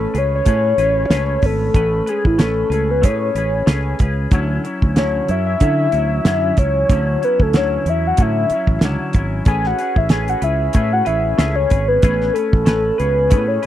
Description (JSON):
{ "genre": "indie pop, bedroom pop", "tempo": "93 BPM", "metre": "4/4", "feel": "swing 55% on 16ths", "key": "A major", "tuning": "A4 = 440 Hz", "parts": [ { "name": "soft octave-layered synth lead", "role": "melody", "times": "0.0-13.7 s", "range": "E4 to G#5", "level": "-18 LUFS", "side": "left 1 dB", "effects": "analog chorus, tape echo" }, { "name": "semi-hollow electric guitar", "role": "accompaniment", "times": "0.0-13.7 s", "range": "D3 to B4", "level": "-24 LUFS", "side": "left 2 dB", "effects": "analog chorus, warbly pitch drift" }, { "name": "fingered electric bass", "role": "bass", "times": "0.0-13.6 s", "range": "G#1 to D3", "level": "-20 LUFS", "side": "equal", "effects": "none" }, { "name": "damped 70s drum kit", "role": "drums", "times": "0.1-13.7 s", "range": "hi-hat, kick drum, snare drum", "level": "-15 LUFS", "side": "right 1 dB", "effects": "none" } ], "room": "little or no reverb", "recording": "dry, close 1970s-style studio recording", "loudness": "-14 LUFS", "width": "side -12 dB against mid", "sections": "0.0-13.7 A section", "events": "soft synth lead solo 0.0-13.7", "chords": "0.0 Amaj9; 4.3 Dmaj9; 9.5 Amaj9", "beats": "0.46 1.11 | 1.75 2.39 3.04 3.68 | 4.32 4.97 5.61 6.25 | 6.89 7.54 8.18 8.82 | 9.47 10.11 10.75 11.39 | 12.03 12.68 13.32" }